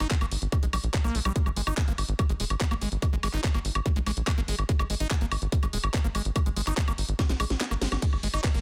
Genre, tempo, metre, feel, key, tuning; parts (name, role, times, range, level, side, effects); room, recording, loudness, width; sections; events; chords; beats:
psychedelic trance; 144 BPM; 4/4; straight; G# harmonic minor; A4 = 438 Hz
liquid acid bass; riff; 0.0-8.6 s; G3 to D#4; -38 LUFS; equal; phaser, sidechain pumping, tape echo
tight sequencer bass; bass; 0.0-8.6 s; D#1 to B1; -31 LUFS; equal
garage drum kit; drums; 0.0-8.6 s; handclaps, hi-hat, ride cymbal, snare drum, woodblock; -34 LUFS; equal; small room ambience, soft clipping on snare
electronic kick drum; drums; 0.1-8.5 s; -28 LUFS; equal; small room ambience
little or no reverb; dense, heavily limited modern master; -27 LUFS; mono
0.0-8.6 A section
drum fill 7.2-8.0; kick drops out 7.6-8.0
0.0 G#5
0.11 0.52 0.94 | 1.36 1.77 2.19 2.61 | 3.02 3.44 3.86 4.27 | 4.69 5.11 5.52 5.94 | 6.36 6.77 7.19 7.61 | 8.02 8.44